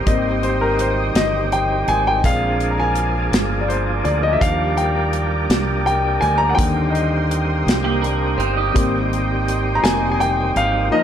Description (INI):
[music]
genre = slow gospel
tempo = 55 BPM (dotted quarters)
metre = 6/8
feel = straight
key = unclear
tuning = A4 = 441 Hz
[part]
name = warm baby grand piano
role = accompaniment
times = 0.0-11.0 s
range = D3 to Bb5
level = -20 LUFS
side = left 2 dB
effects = none
[part]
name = lush unison pad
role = sustained chords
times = 0.0-11.0 s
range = Eb5 to Eb6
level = -28 LUFS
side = equal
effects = chorus
[part]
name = overdriven tonewheel organ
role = sustained chords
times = 0.0-11.0 s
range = Eb3 to Bb4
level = -24 LUFS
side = right 3 dB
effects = slow rotary speaker
[part]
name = fingered electric bass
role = bass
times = 0.0-10.9 s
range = F1 to Eb2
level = -22 LUFS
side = equal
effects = none
[part]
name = modern studio drum kit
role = drums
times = 0.1-10.7 s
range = hi-hat, kick drum, snare drum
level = -21 LUFS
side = equal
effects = none
[part]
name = clean electric guitar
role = second line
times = 7.8-8.9 s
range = Bb3 to Eb5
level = -23 LUFS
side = right 5 dB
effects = wide subtle chorus
[sound]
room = light reverb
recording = none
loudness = -16 LUFS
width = side -9 dB against mid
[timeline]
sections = 0.0-11.0 A section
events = grand piano solo 0.0-11.0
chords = 0.1 Abmaj7; 2.2 Bb7; 4.4 Ebmaj7; 6.6 Cm7/Eb; 8.8 Abmaj7